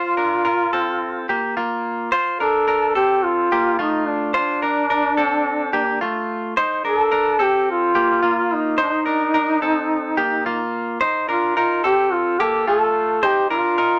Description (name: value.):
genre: indie pop.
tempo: 108 BPM.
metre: 4/4.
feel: straight.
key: Bb major.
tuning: A4 = 440 Hz.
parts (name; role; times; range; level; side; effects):
mellow duduk; melody; 0.0-14.0 s; D4 to A4; -21 LUFS; equal; none.
direct-recorded clean electric guitar; arpeggios; 0.0-14.0 s; A3 to C5; -23 LUFS; equal; none.
room: moderate studio reverb, RT60 0.5 s.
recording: none.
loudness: -20 LUFS.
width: mono.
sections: 0.0-2.1 A section; 2.1-14.0 B section.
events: none.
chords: 0.0 Fsus4; 2.1 Bbmaj7; 6.6 Ebmaj7; 11.0 F7.